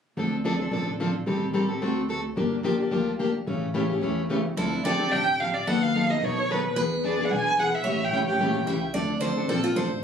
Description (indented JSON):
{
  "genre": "acoustic string swing (jazz manouche)",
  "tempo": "219 BPM",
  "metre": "4/4",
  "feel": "swing 56% on 8ths",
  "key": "unclear",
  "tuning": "A4 = 439 Hz",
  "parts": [
    { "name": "picked plugged-in steel-string acoustic guitar", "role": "accompaniment", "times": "0.2-9.9 s", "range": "C#3 to A4", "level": "-26 LUFS", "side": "left 2 dB", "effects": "none" },
    { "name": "upright bass", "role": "bass", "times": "0.2-10.0 s", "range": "G1 to B2", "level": "-30 LUFS", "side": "equal", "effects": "none" },
    { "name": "picked steel-string acoustic guitar", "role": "second line", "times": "4.6-10.0 s", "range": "E4 to E5", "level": "-31 LUFS", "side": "right 2 dB", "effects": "none" },
    { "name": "warm violin", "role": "melody", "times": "4.9-8.8 s", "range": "B4 to G#5", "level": "-25 LUFS", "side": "right 2 dB", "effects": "plate reverb" }
  ],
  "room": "moderate studio reverb, RT60 0.6 s",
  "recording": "recorded on a phone in the room, club reverb, compression",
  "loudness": "-23 LUFS",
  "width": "side -7 dB against mid",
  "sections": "0.2-4.6 A section; 4.6-10.0 B section",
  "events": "none",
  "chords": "0.2 Dm7; 1.3 Am7b5; 1.8 D7; 2.4 Gm7; 3.5 A7; 4.6 Dm9; 5.7 B7/D#; 6.8 E7; 7.9 A7; 8.9 Dm7"
}